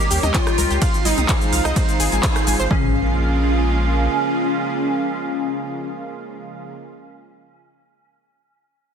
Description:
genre	progressive house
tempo	127 BPM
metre	4/4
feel	straight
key	Bb dorian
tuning	A4 = 440 Hz
part	plucky unison lead	melody	0.0-6.7 s	Db4 to G4	-23 LUFS	equal	phaser, lush chorus, sidechain pumping, dub echo
part	lush unison pad	sustained chords	0.0-6.7 s	Db3 to G4	-26 LUFS	right 2 dB	chorus, sidechain pumping
part	pop drum kit	drums	0.0-2.7 s	handclaps, hi-hat, ride cymbal, rim click, shaker	-24 LUFS	equal	none
part	drifting glass-harmonics texture	texture	0.0-2.7 s	C7	-32 LUFS	right 4 dB	chorus, built-in reverb, sidechain pumping
part	analog pluck	arpeggios	0.1-2.9 s	G4 to Eb6	-26 LUFS	equal	chorus, sidechain pumping, ping-pong delay
part	saturated sub bass	bass	0.1-4.1 s	Ab1 to Eb2	-21 LUFS	equal	sidechain pumping
part	electronic toms, congas and woodblock	percussion	0.2-2.6 s	none	-30 LUFS	left 1 dB	overdrive, sidechain pumping on perc, sidechain pumping on toms
part	big-room dance drum kit	drums	0.3-2.8 s	kick drum, toms	-21 LUFS	equal	overdrive
room	light reverb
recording	dense, heavily limited modern master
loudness	-17 LUFS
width	side -7 dB against mid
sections	0.0-2.7 A section; 2.7-6.5 B section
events	drop 0.0-2.7; band accent 2.2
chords	0.0 Eb7; 0.8 Ab6; 2.7 Bbm7

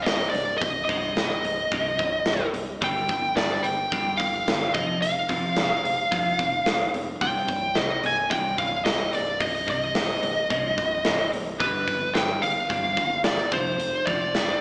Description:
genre	quiet-loud alternative rock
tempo	109 BPM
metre	4/4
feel	straight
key	C minor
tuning	A4 = 440 Hz
part	fuzz lead guitar	melody	0.0-14.6 s	B4 to Ab5	-27 LUFS	equal	distortion, digital delay
part	clean electric guitar	arpeggios	0.0-14.6 s	C2 to G3	-36 LUFS	equal	ensemble chorus
part	growling picked electric bass	bass	0.0-14.6 s	C1 to G2	-38 LUFS	equal	overdrive
part	big rock drum kit	drums	0.1-14.5 s	hi-hat, kick drum, snare drum	-30 LUFS	equal	none
room	light reverb, studio ambience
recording	live gig heard through the venue's PA, club reverb, small speaker sound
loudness	-25 LUFS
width	mono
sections	0.0-14.6 A section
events	none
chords	0.0 Cm; 2.8 G5; 4.7 F5; 7.2 Cm; 11.6 G; 13.5 F5

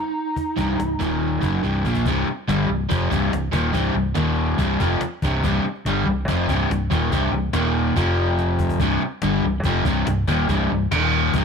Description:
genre	classic rock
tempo	142 BPM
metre	4/4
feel	straight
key	C minor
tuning	A4 = 442 Hz
part	lead guitar through a small cranked amp	melody	0.0-1.6 s	Eb4	-26 LUFS	right 4 dB	overdrive
part	cajon	drums	0.4-11.4 s	none	-28 LUFS	left 3 dB	none
part	crunchy overdriven guitar	riff	0.6-11.4 s	C2 to Bb3	-21 LUFS	left 1 dB	none
part	hollow-body short-scale fingered electric bass	bass	0.6-11.4 s	C1 to Bb1	-24 LUFS	equal	none
room	light reverb, digital ambience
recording	1960s-style stereo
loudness	-19 LUFS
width	side -6 dB against mid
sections	0.0-2.1 A section; 2.1-8.8 B section; 8.8-11.4 B section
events	drum fill 1.6-2.1, 8.4-8.8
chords	0.0 Cm; 1.0 Eb5; 1.4 C5; 2.1 Cm; 4.2 Eb5; 4.6 Cm; 7.5 Eb5; 8.0 F5; 8.8 Cm; 10.9 Eb5

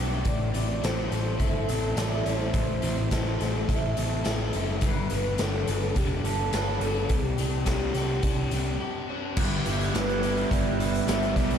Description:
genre	rock, shoegaze and dream pop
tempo	105 BPM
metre	4/4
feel	straight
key	G major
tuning	A4 = 439 Hz
part	fingerpicked twelve-string acoustic guitar	arpeggios	0.0-11.6 s	E3 to A4	-36 LUFS	right 10 dB	analog chorus, tape echo
part	overdriven semi-hollow guitar	riff	0.0-11.6 s	G2 to A4	-32 LUFS	left 8 dB	wide subtle chorus
part	twangy electric guitar	riff	0.0-11.6 s	A2 to D5	-36 LUFS	right 8 dB	reverse reverb
part	fuzz picked electric bass	bass	0.0-11.6 s	E1 to C2	-29 LUFS	equal	overdrive
part	raw garage drum kit	drums	0.2-11.6 s	crash cymbal, hi-hat, kick drum, snare drum	-29 LUFS	equal	none
part	warm velvety synth lead	melody	0.3-11.6 s	G4 to E5	-34 LUFS	left 2 dB	chorus, tape echo
part	crunchy overdriven guitar	riff	9.4-11.6 s	G2 to G3	-32 LUFS	equal	ensemble chorus
room	light reverb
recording	none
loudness	-24 LUFS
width	side -8 dB against mid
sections	0.0-9.4 A section; 9.4-11.6 B section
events	break 8.8-9.4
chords	0.3 Am; 4.8 Gadd9; 7.1 Csus2; 9.4 G6

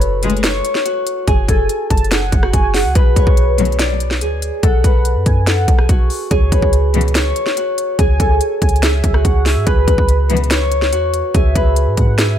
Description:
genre	hip hop, trap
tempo	143 BPM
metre	4/4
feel	half-time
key	unclear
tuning	A4 = 440 Hz
part	Celtic harp	melody	0.0-12.4 s	E4 to D5	-19 LUFS	equal	none
part	warm velvety synth lead	second line	0.0-12.4 s	B4 to A5	-24 LUFS	right 1 dB	chorus, ping-pong delay
part	clean 808-style bass	bass	0.0-12.4 s	F#1 to G#2	-16 LUFS	equal	none
part	trap drum kit	drums	0.0-12.3 s	hi-hat, kick drum, rim click, snare drum	-16 LUFS	equal	none
part	warm symphonic string section	stabs	0.2-0.4, 3.6-3.8, 6.9-7.1, 10.3-10.5 s	C#2 to G#3	-21 LUFS	left 6 dB	ping-pong delay
room	digital ambience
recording	none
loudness	-12 LUFS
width	side -10 dB against mid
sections	0.0-12.4 A section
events	none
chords	0.0 F#madd9; 3.0 Bm; 6.3 C#m7

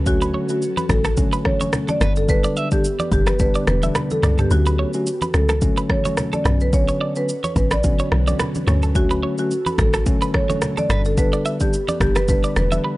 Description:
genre	afrobeats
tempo	108 BPM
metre	4/4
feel	swing 55% on 16ths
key	unclear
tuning	A4 = 441 Hz
part	tine electric piano	accompaniment	0.0-13.0 s	D3 to D4	-24 LUFS	left 1 dB	none
part	ethereal airy pad	sustained chords	0.0-13.0 s	D3 to B4	-32 LUFS	equal	ensemble chorus, built-in reverb
part	electric guitar at the edge of break-up	riff	0.0-13.0 s	A4 to E5	-27 LUFS	right 4 dB	none
part	deep log drum bass	bass	0.0-12.8 s	E1 to D2	-20 LUFS	equal	none
part	marimba with medium mallets	melody	0.1-12.7 s	F#4 to D5	-24 LUFS	equal	none
part	afro-pop drum kit	drums	0.1-12.8 s	kick drum, rim click, shaker, toms	-21 LUFS	equal	none
part	congas	percussion	0.8-12.8 s	none	-29 LUFS	equal	none
room	little or no reverb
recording	dry, gritty hardware recording, nothing above 10.8 kHz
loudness	-17 LUFS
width	side -19 dB against mid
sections	0.0-13.0 A section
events	kick muted 4.5-5.6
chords	0.0 Bmadd9; 2.0 G; 4.5 Dmaj7; 6.5 Bmadd9; 10.9 G

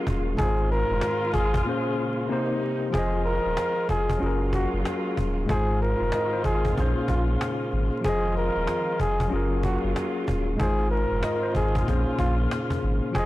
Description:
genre	hip hop, boom-bap hip-hop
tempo	94 BPM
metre	4/4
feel	swing 61% on 16ths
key	F phrygian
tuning	A4 = 444 Hz
part	mellow tine electric piano	accompaniment	0.0-13.3 s	Ab2 to Eb5	-28 LUFS	left 2 dB	overdrive, medium stereo tremolo, cassette tape, high-pass filter, low-pass filter
part	dark studio string section	sustained chords	0.0-13.3 s	C3 to F4	-33 LUFS	equal	high-pass filter, low-pass filter
part	warm sub bass	bass	0.1-13.3 s	Eb1 to Bb1	-26 LUFS	equal	tube saturation
part	cajon	drums	0.1-13.3 s	none	-31 LUFS	equal	none
part	trumpet with bucket mute	melody	0.4-13.3 s	F4 to Bb4	-28 LUFS	equal	high-pass filter, low-pass filter, ping-pong delay
room	light reverb, small room ambience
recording	blown-out, overdriven recording, vinyl crackle, overdrive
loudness	-22 LUFS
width	side -16 dB against mid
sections	0.0-2.9 A section; 2.9-13.3 B section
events	break 1.7-2.9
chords	0.4 Fm7; 1.7 Bbm7; 2.3 Cm7; 2.9 Fm7; 4.2 Gbmaj9; 5.5 Fm7; 6.8 Bbm7; 8.0 Fm7; 9.3 Gbmaj9; 10.6 Fm7; 11.9 Bbm7

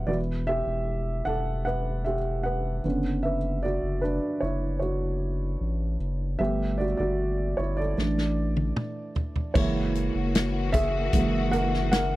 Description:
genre	pop ballad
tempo	76 BPM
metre	4/4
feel	straight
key	B minor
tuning	A4 = 440 Hz
part	dark upright piano	accompaniment	0.0-12.2 s	D3 to F#5	-28 LUFS	right 2 dB	none
part	saturated sub bass	bass	0.0-12.2 s	E1 to A1	-29 LUFS	equal	none
part	natural country drum kit	drums	8.0-12.1 s	crash cymbal, hi-hat, kick drum, snare drum, toms	-27 LUFS	equal	none
part	warm studio string section	sustained chords	9.5-12.2 s	E3 to F#4	-32 LUFS	left 5 dB	none
room	small room reverb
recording	dry, close 1970s-style studio recording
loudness	-24 LUFS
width	side -17 dB against mid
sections	0.0-9.6 A section; 9.6-12.2 B section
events	upright piano solo 0.0-9.6, 9.6-12.2; drum fill 8.0-9.6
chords	0.1 Esus2; 2.8 Bmadd9/F#; 6.4 Gadd9; 8.0 Asus4; 9.6 F#7

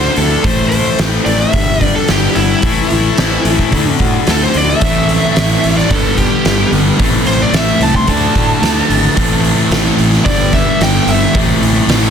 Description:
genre	quiet-loud alternative rock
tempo	110 BPM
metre	4/4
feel	straight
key	A dorian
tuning	A4 = 440 Hz
part	biting lead guitar	melody	0.0-11.3 s	E4 to C6	-17 LUFS	right 1 dB	overdrive
part	electric guitar through a small old amp	arpeggios	0.0-4.8 s	G2 to F#4	-23 LUFS	equal	harmonic tremolo
part	fuzz guitar	riff	0.0-12.1 s	G2 to D4	-17 LUFS	left 12 dB	distortion
part	fuzz fingered electric bass	bass	0.0-12.1 s	G1 to A2	-17 LUFS	equal	overdrive
part	oversized low-tuned drum kit	drums	0.2-12.0 s	hi-hat, kick drum, snare drum	-15 LUFS	right 1 dB	none
part	thick fuzz guitar	riff	4.8-12.1 s	G2 to F#4	-17 LUFS	right 9 dB	distortion
room	light reverb, studio ambience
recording	dense, heavily limited modern master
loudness	-10 LUFS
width	side -7 dB against mid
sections	0.0-12.1 A section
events	lead electric guitar solo 0.0-12.1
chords	0.4 Am; 1.5 G; 2.6 Am; 3.7 D; 4.8 Am; 5.9 G; 7.0 Am; 8.1 D; 9.2 Am; 10.3 G; 11.3 Am

